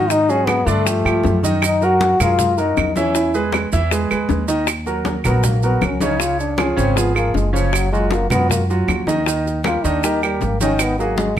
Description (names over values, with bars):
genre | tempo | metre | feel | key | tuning
Afro-Cuban jazz | 157 BPM | 4/4 | straight | Eb minor | A4 = 441 Hz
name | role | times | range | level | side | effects
trombone with cup mute | melody | 0.0-11.4 s | F3 to F#4 | -19 LUFS | left 3 dB | slapback echo
clear baby grand piano | accompaniment | 0.0-11.3 s | Db3 to Fb5 | -21 LUFS | right 3 dB | none
upright bass | bass | 0.0-11.4 s | Gb1 to Ab2 | -21 LUFS | equal | none
bongos | percussion | 0.1-11.4 s | none | -26 LUFS | left 8 dB | none
congas | percussion | 0.1-11.4 s | none | -25 LUFS | left 2 dB | none
maracas | percussion | 0.1-11.4 s | none | -30 LUFS | right 7 dB | none
claves | percussion | 0.5-11.0 s | none | -24 LUFS | right 7 dB | none
room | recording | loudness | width
light reverb | none | -15 LUFS | side -10 dB against mid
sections
0.0-4.7 A section; 4.7-11.4 B section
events
trombone solo 4.7-11.4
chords
0.1 Ab5; 0.9 Gsus2; 1.6 Gb69; 3.2 E; 4.7 Ebm7; 6.2 Db; 7.7 Gb5; 9.3 Eb; 10.8 Absus2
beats
| 0.10 0.48 0.87 1.25 | 1.63 2.01 2.39 2.77 | 3.16 3.54 3.92 4.30 | 4.68 5.07 5.45 5.83 | 6.21 6.60 6.98 7.36 | 7.74 8.13 8.51 8.89 | 9.27 9.66 10.04 10.42 | 10.80 11.19